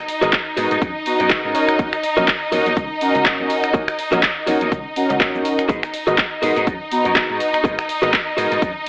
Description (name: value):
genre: filtered disco house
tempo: 123 BPM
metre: 4/4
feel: swing 57% on 16ths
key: G# minor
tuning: A4 = 440 Hz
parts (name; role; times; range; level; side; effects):
- clear symphonic string section; sustained chords; 0.0-8.9 s; D#4 to D#5; -22 LUFS; equal; vintage 12-bit sampler grit, sidechain pumping
- direct-recorded clean electric guitar; riff; 0.1-8.7 s; F#4 to D#5; -21 LUFS; equal; sidechain pumping
- house drum kit; drums; 0.1-8.9 s; finger snaps, handclaps, hi-hat, shaker; -21 LUFS; equal; sidechain pumping on hats, sidechain pumping on cymbals, sidechain pumping on perc
- mellow synth brass; accompaniment; 0.2-8.9 s; B3 to A#5; -22 LUFS; equal; chorus, phaser, sidechain pumping
- vintage slap bass; bass; 0.2-8.7 s; G#1 to D#3; -26 LUFS; equal; sidechain pumping
- electronic kick drum; drums; 0.3-8.7 s; none; -22 LUFS; equal; none
room: light reverb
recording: AM radio sound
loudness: -16 LUFS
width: side -29 dB against mid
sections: 0.0-8.9 A section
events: none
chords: 0.0 G#m7; 1.5 D#m7; 5.7 G#m7